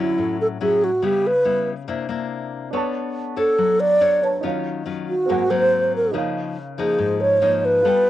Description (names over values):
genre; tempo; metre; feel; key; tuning
bossa nova; 141 BPM; 4/4; straight; unclear; A4 = 440 Hz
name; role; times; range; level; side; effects
mellow wooden-headed alto flute; melody; 0.0-8.1 s; E4 to D5; -17 LUFS; right 1 dB; cassette tape
nylon-string guitar; accompaniment; 0.0-8.1 s; G#2 to C#5; -25 LUFS; left 6 dB; cassette tape
dark baby grand piano; accompaniment; 2.7-8.1 s; B#3 to C#6; -29 LUFS; right 9 dB; cassette tape
room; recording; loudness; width
moderate booth ambience, RT60 0.3 s; home recording on cassette; -18 LUFS; side -13 dB against mid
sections
0.0-8.1 A section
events
none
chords
0.0 Dmaj9; 1.0 C#m7b5; 1.9 C9; 2.7 Bm9; 4.4 D#m9; 5.3 G#9; 6.1 C#69